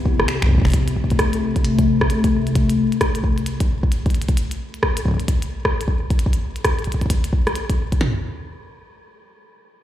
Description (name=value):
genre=IDM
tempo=132 BPM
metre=4/4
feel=swing 62% on 16ths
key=A minor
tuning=A4 = 440 Hz
part: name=hollow soft pad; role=sustained chords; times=0.0-4.4 s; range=C3 to G4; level=-22 LUFS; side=left 3 dB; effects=chorus
part: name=glitchy drum kit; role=drums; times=0.1-8.1 s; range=kick drum, snare drum, toms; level=-20 LUFS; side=equal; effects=small room ambience
part: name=warm sub bass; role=bass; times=0.2-0.7 s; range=G1 to C2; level=-17 LUFS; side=equal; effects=none
part: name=glitchy drum kit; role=drums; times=0.2-8.0 s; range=finger snaps, hi-hat, rim click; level=-25 LUFS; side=equal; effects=small room ambience, ping-pong delay
room=light reverb, digital ambience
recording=played on a big sound system in a bare room, large studio reverb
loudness=-17 LUFS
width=side -12 dB against mid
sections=0.0-8.0 A section; 8.0-9.8 B section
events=none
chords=0.0 Cmaj7; 0.7 Am7; 4.4 N.C.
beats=0.28 | 0.74 1.19 1.65 2.10 | 2.56 3.01 3.46 3.92 | 4.37 4.83 5.28 5.74 | 6.19 6.65 7.10 7.55 | 8.01